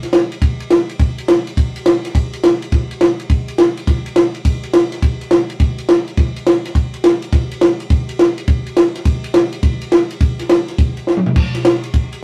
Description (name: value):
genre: rock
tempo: 208 BPM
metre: 4/4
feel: swing 65% on 8ths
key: none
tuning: none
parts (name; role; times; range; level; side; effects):
- compact cocktail drum kit; drums; 0.0-12.2 s; crash cymbal, kick drum, ride cymbal, snare drum, toms; -15 LUFS; equal; none
room: light reverb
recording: rough rehearsal-room recording, warm saturation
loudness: -15 LUFS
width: mono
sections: 0.0-11.4 A section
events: drum fill 11.1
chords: none